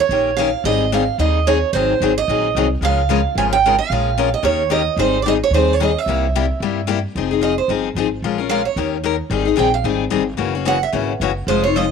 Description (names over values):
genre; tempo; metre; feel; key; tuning
acoustic string swing (jazz manouche); 222 BPM; 4/4; swing 58% on 8ths; unclear; A4 = 440 Hz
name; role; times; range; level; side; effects
picked steel-string acoustic guitar; melody; 0.0-11.9 s; C5 to Ab5; -19 LUFS; right 9 dB; none
picked steel-string acoustic guitar; accompaniment; 0.1-11.8 s; C3 to C5; -19 LUFS; left 11 dB; none
upright bass; bass; 0.1-11.9 s; F1 to G2; -22 LUFS; right 1 dB; none
room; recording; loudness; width
light reverb, small room ambience; 1960s-style stereo with parts hard left and right; -15 LUFS; side -6 dB against mid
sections
0.0-7.1 A section; 7.1-11.9 B section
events
steel-string acoustic guitar solo 7.1-11.9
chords
0.0 Eb9; 0.6 Abmaj7; 1.7 Ab9; 2.8 Db6; 3.9 Bbm7; 4.4 Eb7; 5.0 Abmaj7; 6.1 C7; 7.1 Fm7; 8.2 Bbm7; 8.8 Eb7; 9.3 Abmaj7; 10.4 Gb7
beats
0.11 0.38 | 0.65 0.92 1.19 1.46 | 1.73 2.00 2.27 2.54 | 2.81 3.08 3.35 3.63 | 3.90 4.17 4.44 4.71 | 4.98 5.25 5.52 5.79 | 6.06 6.33 6.60 6.87 | 7.14 7.42 7.69 7.96 | 8.23 8.50 8.77 9.04 | 9.31 9.58 9.85 10.12 | 10.39 10.67 10.94 11.21 | 11.48 11.75